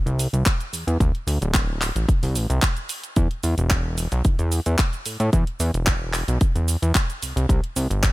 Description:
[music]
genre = nu-disco, nu disco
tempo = 111 BPM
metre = 4/4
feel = straight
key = E minor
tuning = A4 = 440 Hz
[part]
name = fat analog bass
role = bass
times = 0.0-8.1 s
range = D1 to A2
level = -22 LUFS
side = equal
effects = none
[part]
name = house drum kit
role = drums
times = 0.1-8.1 s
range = handclaps, hi-hat, shaker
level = -26 LUFS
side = equal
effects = none
[part]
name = electronic kick drum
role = drums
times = 0.5-8.1 s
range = none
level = -20 LUFS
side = equal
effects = none
[sound]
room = little or no reverb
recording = none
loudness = -20 LUFS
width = side -19 dB against mid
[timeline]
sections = 0.0-8.1 A section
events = none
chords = none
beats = 0.47 | 1.00 1.55 2.09 2.63 | 3.17 3.71 4.25 4.79 | 5.33 5.87 6.41 6.95 | 7.49 8.03

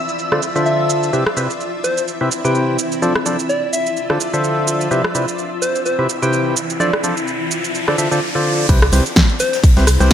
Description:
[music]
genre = piano house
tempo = 127 BPM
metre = 4/4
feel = swing 56% on 16ths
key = C major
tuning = A4 = 440 Hz
[part]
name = string machine, violins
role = sustained chords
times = 0.0-8.2 s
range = E5 to E6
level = -29 LUFS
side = equal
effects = ensemble chorus, sidechain pumping
[part]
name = granular cloud pad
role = texture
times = 0.0-10.1 s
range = C4 to B5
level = -24 LUFS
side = left 2 dB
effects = built-in reverb, sidechain pumping
[part]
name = house drum kit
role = drums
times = 0.1-10.1 s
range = cabasa, hi-hat, rim click, snare drum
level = -19 LUFS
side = right 1 dB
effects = low-pass filter on perc, low-pass filter on snare, low-pass filter on hats
[part]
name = percussive organ stab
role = riff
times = 0.3-10.1 s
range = C3 to G5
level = -19 LUFS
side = equal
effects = chorus, sidechain pumping
[part]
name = soft struck synth lead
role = melody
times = 0.7-9.6 s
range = C5 to E5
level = -22 LUFS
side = left 1 dB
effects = chorus, dub echo
[part]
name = riser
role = sound effects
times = 5.9-8.7 s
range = none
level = -26 LUFS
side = equal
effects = none
[part]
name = organ-like FM bass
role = bass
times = 8.7-10.1 s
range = C2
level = -14 LUFS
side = equal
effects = sidechain pumping
[part]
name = electronic kick drum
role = drums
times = 8.7-10.1 s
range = none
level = -12 LUFS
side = equal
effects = none
[part]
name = oversized low-tuned drum kit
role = drums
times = 8.7-10.1 s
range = hi-hat, snare drum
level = -26 LUFS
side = left 2 dB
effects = sidechain pumping on hats, high-pass filter on hats, high-pass filter on snare, high-pass filter on room
[sound]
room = light reverb, digital ambience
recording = none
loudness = -14 LUFS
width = side -9 dB against mid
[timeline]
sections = 0.0-8.7 A section; 8.7-10.1 B section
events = riser 5.9-8.7; drop 8.7-10.1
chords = 0.2 Dm7; 1.1 Cmaj7; 2.8 F6; 4.0 Dm7; 4.9 Cmaj7; 6.6 F6; 7.7 Dm7; 8.7 Cmaj7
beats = 0.19 0.66 | 1.13 1.60 2.08 2.55 | 3.02 3.49 3.97 4.44 | 4.91 5.38 5.86 6.33 | 6.80 7.27 7.75 8.22 | 8.69 9.16 9.63 10.11

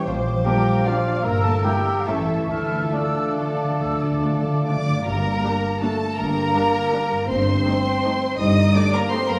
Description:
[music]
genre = classical, orchestral ballroom waltz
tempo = 130-179 BPM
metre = 3/4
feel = rubato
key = D minor, G minor from 5.1 s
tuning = A4 = 441 Hz
[part]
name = muted symphonic violin section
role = melody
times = 0.0-9.4 s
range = D5 to Eb6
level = -32 LUFS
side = equal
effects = none
[part]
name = dark cor anglais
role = second line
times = 0.0-4.9 s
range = Bb4 to A5+20c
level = -31 LUFS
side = equal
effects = none
[part]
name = flute section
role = second line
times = 0.0-5.1 s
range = C#6 to F6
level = -33 LUFS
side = equal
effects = none
[part]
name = muted symphonic violin section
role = second line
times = 0.0-9.4 s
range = A4 to Eb5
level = -31 LUFS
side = equal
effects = none
[part]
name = warm clarinet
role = second line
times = 0.0-4.8 s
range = D4 to Bb4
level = -32 LUFS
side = equal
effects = none
[part]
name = warm bassoon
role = accompaniment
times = 0.0-4.8 s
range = F3 to Bb3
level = -32 LUFS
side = equal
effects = none
[part]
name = concert harp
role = arpeggios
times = 0.0-9.4 s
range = F#2 to A5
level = -33 LUFS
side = equal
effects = none
[part]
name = muted symphonic cello section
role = bass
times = 0.0-8.7 s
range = G2 to Bb3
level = -29 LUFS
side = equal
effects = none
[part]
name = muted chamber double bass section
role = bass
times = 0.1-8.7 s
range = G1 to D2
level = -28 LUFS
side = equal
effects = none
[part]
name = muted symphonic viola section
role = accompaniment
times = 0.5-9.2 s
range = G3 to E4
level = -35 LUFS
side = equal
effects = none
[part]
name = mellow French horn section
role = sustained chords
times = 0.5-9.4 s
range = A3 to F4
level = -29 LUFS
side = equal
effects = none
[part]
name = timpani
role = percussion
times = 2.5-5.1 s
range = D3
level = -29 LUFS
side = equal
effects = none
[sound]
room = wet recital hall reverb, RT60 1.4 s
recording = recorded in a church or concert hall, vinyl crackle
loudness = -21 LUFS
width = mono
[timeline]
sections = 0.0-5.1 A section; 5.1-9.4 B section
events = timpani fill 2.5-5.1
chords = 0.1 Bb; 1.2 Edim/G; 2.1 A; 2.5 Dm; 5.1 Gm; 7.3 Am7b5/G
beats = | 0.07 0.46 0.86 | 1.25 1.65 2.08 | 2.49 2.92 3.38 | 3.80 4.23 4.67 | 5.08 5.44 5.83 | 6.18 6.54 6.93 | 7.29 7.66 8.04 | 8.39 8.74 9.12

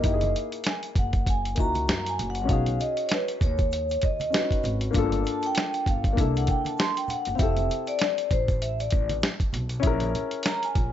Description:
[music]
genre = hip hop, jazz-hop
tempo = 98 BPM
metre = 4/4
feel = swing 59% on 16ths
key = unclear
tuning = A4 = 439 Hz
[part]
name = vibraphone with soft mallets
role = melody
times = 0.0-10.9 s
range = B4 to C6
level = -28 LUFS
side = equal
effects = slapback echo
[part]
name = dark grand piano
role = accompaniment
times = 0.0-10.9 s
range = A#3 to B4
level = -30 LUFS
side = left 7 dB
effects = none
[part]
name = upright bass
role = bass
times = 0.0-10.9 s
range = F1 to F#2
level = -29 LUFS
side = equal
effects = none
[part]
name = dusty soul sampler-style drum kit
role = drums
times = 0.0-10.9 s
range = hi-hat, kick drum, snare drum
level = -26 LUFS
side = equal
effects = vintage 12-bit sampler grit
[part]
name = tube shaker and congas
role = percussion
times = 0.0-10.9 s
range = none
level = -40 LUFS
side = right 5 dB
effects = none
[sound]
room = small room reverb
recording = nothing above 7.7 kHz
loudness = -23 LUFS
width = side -11 dB against mid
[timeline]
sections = 0.0-10.9 A section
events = vibraphone solo 0.0-10.9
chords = 0.0 F#13; 2.5 B69; 4.9 Gm9; 6.2 C13; 7.4 Fmaj9 (rootless); 9.8 A#m7b5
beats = | 0.04 0.65 1.27 1.88 | 2.49 3.10 3.71 4.33 | 4.94 5.55 6.16 6.78 | 7.39 8.00 8.61 9.22 | 9.84 10.45

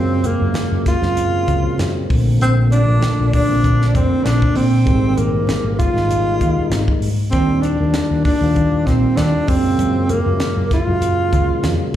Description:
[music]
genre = electric jazz fusion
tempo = 98 BPM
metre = 4/4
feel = swing 54% on 16ths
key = unclear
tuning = A4 = 440 Hz
[part]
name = breathy tenor saxophone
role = melody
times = 0.0-11.9 s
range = Bb3 to F4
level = -19 LUFS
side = right 1 dB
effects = slapback echo
[part]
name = hollow-body jazz guitar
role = second line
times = 0.0-11.9 s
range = Bb3 to F4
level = -31 LUFS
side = right 1 dB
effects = none
[part]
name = mellow tonewheel organ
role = accompaniment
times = 0.0-12.0 s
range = C3 to F4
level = -23 LUFS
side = left 1 dB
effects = overdrive, chorus vibrato, slow rotary speaker, slapback echo
[part]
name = woody fretless electric bass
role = bass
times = 0.0-11.8 s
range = Ab1 to Bb2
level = -18 LUFS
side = equal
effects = wide subtle chorus
[part]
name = crisp fusion drum kit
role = drums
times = 0.2-11.8 s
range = hi-hat, kick drum, snare drum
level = -22 LUFS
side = equal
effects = none
[part]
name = congas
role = percussion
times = 0.2-11.8 s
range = none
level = -30 LUFS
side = equal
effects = none
[sound]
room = light reverb, small room ambience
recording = live gig heard through the venue's PA, club reverb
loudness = -14 LUFS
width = side -11 dB against mid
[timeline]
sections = 0.0-12.0 A section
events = none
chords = 0.0 Gbmaj9; 2.1 Bbmaj9; 4.9 Abmaj9; 7.3 Ebmaj9; 9.5 Gbmaj9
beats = 0.55 1.16 1.78 | 2.40 3.02 3.63 4.25 | 4.87 5.48 6.10 6.71 | 7.33 7.94 8.56 9.17 | 9.79 10.40 11.01 11.63

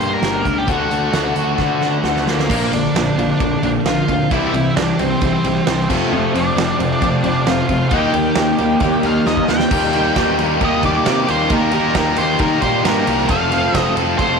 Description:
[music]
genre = classic rock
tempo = 133 BPM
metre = 4/4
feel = straight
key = unclear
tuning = A4 = 439 Hz
[part]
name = octave-fuzz lead guitar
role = melody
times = 0.0-14.4 s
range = A3 to G5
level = -21 LUFS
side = equal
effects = distortion, slapback echo
[part]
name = biting overdriven guitar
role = riff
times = 0.0-14.4 s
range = F2 to Bb4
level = -20 LUFS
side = left 12 dB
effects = none
[part]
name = distorted electric guitar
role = riff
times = 0.0-14.4 s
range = F2 to Bb4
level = -22 LUFS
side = right 13 dB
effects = distortion
[part]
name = fuzz picked electric bass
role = bass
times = 0.0-14.4 s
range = F1 to Eb3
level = -24 LUFS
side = equal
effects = overdrive
[part]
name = huge arena drum kit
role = drums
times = 0.0-14.3 s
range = crash cymbal, hi-hat, kick drum, ride cymbal, snare drum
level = -22 LUFS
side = right 4 dB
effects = none
[part]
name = picked acoustic archtop guitar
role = accompaniment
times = 2.5-14.4 s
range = F2 to G4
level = -26 LUFS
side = right 11 dB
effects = none
[part]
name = tonewheel organ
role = sustained chords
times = 2.5-14.4 s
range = E3 to Bb4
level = -30 LUFS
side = equal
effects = none
[part]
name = raw garage guitar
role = riff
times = 6.1-9.7 s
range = F2 to Eb4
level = -24 LUFS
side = right 1 dB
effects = overdrive
[sound]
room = moderate plate reverb, RT60 1.4 s, studio reverb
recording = 1960s-style stereo with parts hard left and right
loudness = -14 LUFS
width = side -5 dB against mid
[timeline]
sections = 0.0-2.5 A section; 2.5-9.7 B section; 9.7-14.4 C section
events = drum fill 1.6-2.5, 9.3-9.7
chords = 0.0 Gm; 0.7 D; 2.5 Bb; 4.3 C; 5.9 F; 7.9 Eb; 13.3 F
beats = 0.23 | 0.69 1.14 1.59 2.05 | 2.50 2.96 3.41 3.86 | 4.31 4.76 5.21 5.67 | 6.12 6.57 7.02 7.47 | 7.92 8.37 8.82 9.27 | 9.72 10.16 10.61 11.06 | 11.51 11.96 12.40 12.85 | 13.30 13.74 14.19

